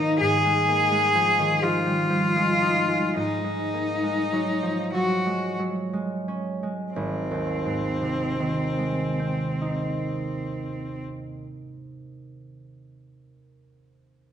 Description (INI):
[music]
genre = classical, impressionist duo for cello and harp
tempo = 28-42 BPM (dotted quarters)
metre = 6/8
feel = rubato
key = Ab major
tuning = A4 = 440 Hz
[part]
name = rich cello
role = melody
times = 0.0-11.0 s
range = C4 to Ab4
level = -24 LUFS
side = left 2 dB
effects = none
[part]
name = concert harp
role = accompaniment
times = 0.0-12.3 s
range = Ab1 to Eb4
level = -27 LUFS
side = right 2 dB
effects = none
[sound]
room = wet recital hall reverb, RT60 1.6 s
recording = nothing above 10.6 kHz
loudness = -22 LUFS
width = side -8 dB against mid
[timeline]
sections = 0.0-7.0 A section; 7.0-10.7 B section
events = slowing down 0.0-7.0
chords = 0.2 Ab5; 3.2 Gb69/Ab; 7.0 Ab